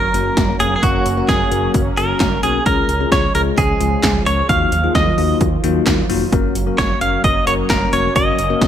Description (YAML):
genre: synth-pop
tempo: 131 BPM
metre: 4/4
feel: straight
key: unclear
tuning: A4 = 440 Hz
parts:
  - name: direct-recorded clean electric guitar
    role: melody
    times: 0.0-8.7 s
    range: F#4 to E#5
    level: -18 LUFS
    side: right 1 dB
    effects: none
  - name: sweeping resonant pad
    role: sustained chords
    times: 0.0-8.7 s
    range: D#3 to E#4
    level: -24 LUFS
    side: right 2 dB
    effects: chorus
  - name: smooth gliding synth bass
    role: bass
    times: 0.0-8.7 s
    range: E#1 to D#2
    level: -22 LUFS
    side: right 1 dB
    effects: none
  - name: bell-like tine electric piano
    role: accompaniment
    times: 0.1-8.7 s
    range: G#3 to A#4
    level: -22 LUFS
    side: left 8 dB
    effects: phaser
  - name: 80s electronic pad drums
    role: drums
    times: 0.1-8.7 s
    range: handclaps, hi-hat, kick drum, snare drum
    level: -19 LUFS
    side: right 1 dB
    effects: overdrive
room: moderate lush hall reverb, RT60 1.6 s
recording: none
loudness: -14 LUFS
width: side -10 dB against mid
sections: 0.0-8.7 A section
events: none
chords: 0.0 F#; 2.7 C#; 4.5 D#madd9; 6.3 F#